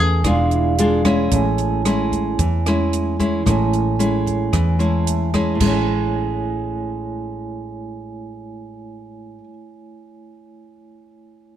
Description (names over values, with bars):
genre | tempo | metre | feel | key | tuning
bossa nova | 112 BPM | 4/4 | straight | A major | A4 = 442 Hz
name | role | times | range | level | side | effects
bluegrass banjo | melody | 0.0-0.7 s | G#4 | -23 LUFS | left 3 dB | none
nylon-string guitar | accompaniment | 0.0-9.5 s | A2 to F4 | -21 LUFS | left 2 dB | none
vibraphone with soft mallets | accompaniment | 0.0-11.6 s | A3 to A5 | -25 LUFS | right 5 dB | none
hollow-body short-scale fingered electric bass | bass | 0.0-9.4 s | E1 to E2 | -22 LUFS | equal | none
compact cocktail drum kit | drums | 0.2-5.7 s | crash cymbal, hi-hat, kick drum, rim click | -25 LUFS | right 2 dB | none
breathy trombone | second line | 0.5-1.3 s | E4 to G#4 | -24 LUFS | right 4 dB | none
room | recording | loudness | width
light reverb | none | -17 LUFS | side -10 dB against mid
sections
0.0-1.3 A section; 1.3-5.6 B section; 5.6-9.9 C section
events
vibraphone fill 4.5-5.6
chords
0.2 E7b9; 1.3 Amaj7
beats
0.25 0.78 | 1.32 1.85 2.39 2.92 | 3.46 4.00 4.53 5.07 | 5.61 6.14 6.68 7.21 | 7.75 8.29 8.82 9.36